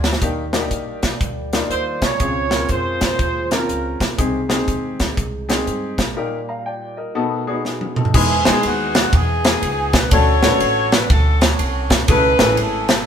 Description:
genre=uptempo gospel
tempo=121 BPM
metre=4/4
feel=swing 64% on 8ths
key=Eb major, E major from 8.1 s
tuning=A4 = 440 Hz
part: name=mellow horn section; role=melody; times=0.0-4.2, 8.2-13.1 s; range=Ab3 to C#5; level=-20 LUFS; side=right 1 dB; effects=none
part: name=clear grand piano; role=accompaniment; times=0.0-13.0 s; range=Bb2 to Bb5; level=-22 LUFS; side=left 3 dB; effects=none
part: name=upright bass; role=bass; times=0.0-13.0 s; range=G#1 to G2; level=-23 LUFS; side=equal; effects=none
part: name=crisp fusion drum kit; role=drums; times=0.0-13.0 s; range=crash cymbal, hi-hat, kick drum, ride cymbal, snare drum, toms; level=-18 LUFS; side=equal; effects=none
part: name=mellow French horn section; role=sustained chords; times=0.2-8.1 s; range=Bb2 to D5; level=-32 LUFS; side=right 4 dB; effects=none
part: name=warm trumpet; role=melody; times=1.7-4.0 s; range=Bb4 to Db5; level=-24 LUFS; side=right 5 dB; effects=none
room=moderate stone room reverb, RT60 0.9 s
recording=band playing live in one room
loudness=-16 LUFS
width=side -8 dB against mid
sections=0.2-8.1 A section; 8.1-13.1 B section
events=drum fill 0.0, 7.7-8.1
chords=0.2 Ebmaj7; 2.2 Dbmaj7; 4.2 Abmaj7/C; 6.2 Eb/Bb; 7.2 B7; 8.1 Emaj7; 10.1 Dmaj7; 12.1 Amaj7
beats=| 0.21 0.71 1.21 1.70 | 2.20 2.69 3.19 3.69 | 4.18 4.68 5.17 5.67 | 6.17 6.66 7.16 7.65 | 8.15 8.64 9.13 9.62 | 10.12 10.61 11.10 11.59 | 12.09 12.58

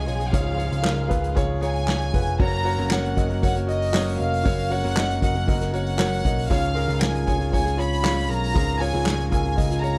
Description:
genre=piano-driven pop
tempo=117 BPM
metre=4/4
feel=straight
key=F# major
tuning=A4 = 440 Hz
part: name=warm studio violin section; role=melody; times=0.0-10.0 s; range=D#5 to B5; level=-30 LUFS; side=equal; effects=none
part: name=warm grand piano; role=accompaniment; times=0.0-10.0 s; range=G#2 to A#5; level=-30 LUFS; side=equal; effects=none
part: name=warm studio string section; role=sustained chords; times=0.0-2.4 s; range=C#3 to G#4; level=-40 LUFS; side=equal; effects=none
part: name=picked electric bass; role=bass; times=0.0-10.0 s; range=E#1 to C#2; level=-28 LUFS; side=equal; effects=none
part: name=soft-mallet drum kit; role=drums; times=0.1-10.0 s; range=crash cymbal, handclaps, hi-hat, kick drum, snare drum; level=-28 LUFS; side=equal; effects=none
part: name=fingerpicked plugged-in steel-string acoustic guitar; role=riff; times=2.4-10.0 s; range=F#2 to A#4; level=-33 LUFS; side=equal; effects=none
room=small room ambience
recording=none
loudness=-23 LUFS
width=mono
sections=0.0-2.4 A section; 2.4-10.0 B section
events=grand piano fill 1.4-2.4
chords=0.0 C#; 2.4 F#; 6.5 C#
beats=| 0.34 0.85 1.37 1.88 | 2.40 2.91 3.42 3.94 | 4.45 4.96 5.48 5.99 | 6.50 7.01 7.53 8.04 | 8.55 9.06 9.58

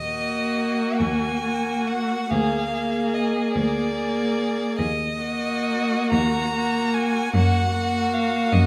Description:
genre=classical, slow romantic movement for string quartet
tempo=41-51 BPM (dotted quarters)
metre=6/8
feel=rubato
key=Eb minor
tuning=A4 = 439 Hz
part: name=rich violin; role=melody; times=0.0-8.7 s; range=D5 to Bb5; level=-30 LUFS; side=equal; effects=none
part: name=rich viola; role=accompaniment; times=0.0-8.7 s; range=Bb3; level=-27 LUFS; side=equal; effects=none
part: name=clear cello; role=bass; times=0.0-8.7 s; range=D2 to Gb2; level=-27 LUFS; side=equal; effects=none
part: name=warm violin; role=second line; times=0.1-8.7 s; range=Gb4 to Ab4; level=-31 LUFS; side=equal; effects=none
room=wet recital hall reverb, RT60 1.5 s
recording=none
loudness=-23 LUFS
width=mono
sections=0.0-8.7 A section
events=none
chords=0.0 Ebm; 2.3 Bb7/D; 4.8 Ebm; 7.3 Ebm/Gb (rootless)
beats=1.01 | 2.32 3.56 | 4.79 6.12 | 7.34 8.53

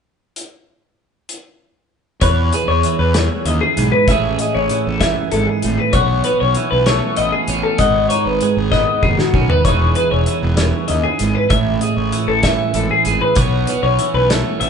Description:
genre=math rock and midwest emo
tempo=65 BPM (dotted quarters)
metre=6/8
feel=straight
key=E major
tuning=A4 = 442 Hz
part: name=loose indie drum kit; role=drums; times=0.4-14.7 s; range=hi-hat, kick drum, snare drum, toms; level=-20 LUFS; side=equal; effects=none
part: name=twelve-string electric guitar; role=accompaniment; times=2.2-14.7 s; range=E2 to C#5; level=-20 LUFS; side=right 6 dB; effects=none
part: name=twelve-string electric guitar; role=arpeggios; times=2.2-14.7 s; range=F#4 to E5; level=-17 LUFS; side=left 4 dB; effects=vibrato effect
part: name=fuzz fingered electric bass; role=bass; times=2.2-14.7 s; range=E1 to E2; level=-20 LUFS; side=equal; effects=overdrive
room=moderate large studio reverb, RT60 1.3 s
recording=band playing live in one room, nothing above 10.4 kHz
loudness=-13 LUFS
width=side -6 dB against mid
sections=0.4-2.2 A section; 2.2-14.7 B section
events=drum fill 8.7-9.7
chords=0.4 N.C.; 2.2 Emaj9; 4.1 Amaj7; 5.9 B9sus4; 7.8 G#m7; 9.7 Emaj9; 11.5 Amaj7; 13.4 B9sus4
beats=| 0.37 1.29 | 2.22 3.15 | 4.08 5.01 | 5.93 6.86 | 7.79 8.72 | 9.65 10.58 | 11.51 12.44 | 13.37 14.30

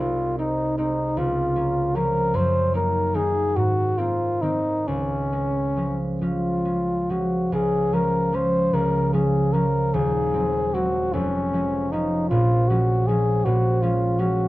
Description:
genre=classical, romantic duo for trumpet and harp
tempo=43-54 BPM (dotted quarters)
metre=6/8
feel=rubato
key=Db major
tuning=A4 = 440 Hz
part: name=dark trumpet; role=melody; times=0.0-14.5 s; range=Db4 to C5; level=-23 LUFS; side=left 1 dB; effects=none
part: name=concert harp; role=accompaniment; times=0.0-14.5 s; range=Eb1 to Eb4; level=-23 LUFS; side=right 1 dB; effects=none
room=moderate studio ambience, RT60 0.5 s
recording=dark, warm production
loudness=-20 LUFS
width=side -17 dB against mid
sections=0.0-7.5 A section; 7.5-14.5 B section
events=none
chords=0.0 Ab/C; 1.2 Bbm/Db; 2.3 Ebm/Gb; 3.6 Abadd9; 4.9 Db; 9.9 Ab7/Eb; 11.1 Db/F; 12.3 Bbm7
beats=| 0.01 1.18 | 2.35 3.56 | 4.88 6.22 | 7.53 8.75 | 9.94 11.14 | 12.31 13.45

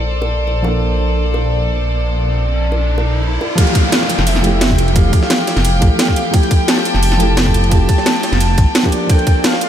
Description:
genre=liquid drum and bass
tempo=174 BPM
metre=4/4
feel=straight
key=F major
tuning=A4 = 443 Hz
part: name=felt-muted upright piano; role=accompaniment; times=0.0-9.7 s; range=E3 to A4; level=-20 LUFS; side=equal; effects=wide subtle chorus, ping-pong delay
part: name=bright chamber string section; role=sustained chords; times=0.0-9.7 s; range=G4 to G5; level=-22 LUFS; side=left 1 dB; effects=sidechain pumping
part: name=dark detuned saw bass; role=bass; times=0.0-8.7 s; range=F1 to Bb1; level=-16 LUFS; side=equal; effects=none
part: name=bongos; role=percussion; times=0.2-3.5 s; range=none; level=-30 LUFS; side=right 1 dB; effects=none
part: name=riser and downlifter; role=sound effects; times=1.9-6.3 s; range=none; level=-24 LUFS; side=equal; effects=none
part: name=warm velvety synth lead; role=melody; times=3.6-9.7 s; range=E5 to A5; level=-23 LUFS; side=equal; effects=chorus, ping-pong delay
part: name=drum and bass drum kit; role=drums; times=3.6-9.7 s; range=hi-hat, snare drum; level=-18 LUFS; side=equal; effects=overdrive
part: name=electronic kick drum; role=drums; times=3.6-9.3 s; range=none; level=-13 LUFS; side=equal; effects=overdrive
part: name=jungle sampler-style drum kit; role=drums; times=3.6-9.7 s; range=hi-hat, ride cymbal, snare drum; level=-23 LUFS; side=right 1 dB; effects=high-pass filter on cymbals, high-pass filter on snare, high-pass filter on hats, high-pass filter on room
room=moderate huge ambient reverb, RT60 7.4 s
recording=dreamy mix soaked in reverb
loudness=-12 LUFS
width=side -10 dB against mid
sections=0.0-3.6 A section; 3.6-9.7 B section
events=riser 1.9-3.6; drop 3.6-9.7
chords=0.0 Bbmaj7; 3.6 Fmaj9; 8.9 Bbmaj7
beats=0.13 0.48 | 0.82 1.17 1.51 1.85 | 2.20 2.54 2.89 3.23 | 3.58 3.92 4.27 4.61 | 4.96 5.30 5.65 5.99 | 6.34 6.68 7.03 7.37 | 7.72 8.06 8.41 8.75 | 9.10 9.44

